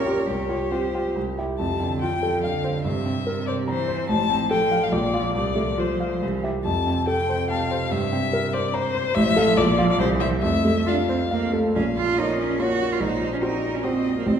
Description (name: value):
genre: quick classical-period movement for piano trio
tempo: 135-147 BPM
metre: 3/4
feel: rubato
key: F major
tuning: A4 = 439 Hz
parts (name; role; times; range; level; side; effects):
- rich violin; melody; 0.0-14.4 s; Bb4 to A5; -27 LUFS; left 6 dB; none
- clear cello; second line; 0.0-14.4 s; C3 to Bb4; -27 LUFS; right 4 dB; none
- warm concert grand piano; accompaniment; 0.0-14.4 s; A1 to Bb5; -23 LUFS; equal; none
room: wet recital hall reverb, RT60 1.7 s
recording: heard from further back in the room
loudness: -20 LUFS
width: side -8 dB against mid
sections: 0.0-1.6 A section; 1.6-11.7 B section; 11.7-14.4 C section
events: none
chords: 0.3 Csus4; 1.2 C; 1.6 F; 2.9 C7/G; 4.1 F/A; 4.9 Bb; 5.4 F/C; 6.2 C; 6.7 F; 7.9 C7/G; 9.2 F/A; 9.6 Bb; 10.0 C; 10.4 F; 11.7 Bbm; 13.0 Cm7b5/Bb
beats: | 0.27 0.71 1.16 | 1.59 2.02 2.44 | 2.85 3.27 3.68 | 4.10 4.51 4.93 | 5.36 5.79 6.22 | 6.65 7.08 7.50 | 7.92 8.33 8.75 | 9.16 9.58 10.00 | 10.43 10.87 11.31 | 11.74 12.16 12.58 | 13.00 13.41 13.83 | 14.25